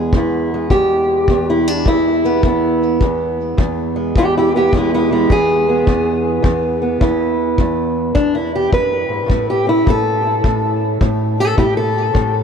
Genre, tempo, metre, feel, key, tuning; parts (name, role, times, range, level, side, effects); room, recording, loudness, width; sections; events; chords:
acoustic country blues, solo or duo; 105 BPM; 4/4; swing 66% on 8ths; E major; A4 = 435 Hz
fingerpicked steel-string acoustic guitar; melody; 0.0-12.4 s; E2 to B4; -14 LUFS; equal; ping-pong delay
kick drum; drums; 0.1-12.3 s; -17 LUFS; left 1 dB
wet cathedral reverb, RT60 4.2 s; dreamy mix soaked in reverb, cassette tape; -13 LUFS; side -7 dB against mid
0.1-12.4 A section
steel-string acoustic guitar solo 0.1-12.4
0.1 E; 9.3 A